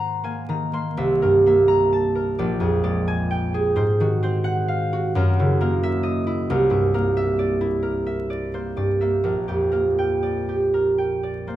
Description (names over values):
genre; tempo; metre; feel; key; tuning
classical, solo harp piece; 43 BPM (dotted quarters); 6/8; uneven beats, rubato; unclear; A4 = 440 Hz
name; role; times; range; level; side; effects
concert harp; solo; 0.0-11.6 s; Bb1 to C6; -19 LUFS; right 1 dB; none
room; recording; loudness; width
moderate recital hall reverb, RT60 1.6 s; close, detailed microphones, vinyl crackle; -19 LUFS; side -13 dB against mid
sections
0.0-11.6 A section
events
none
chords
0.0 Ab9; 1.0 C6; 2.4 Bb13; 3.7 Ab13; 5.1 Gb13; 6.5 C9; 9.3 Bb6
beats
| 0.96 2.36 | 3.74 5.14 | 6.50 7.85 | 9.25 10.73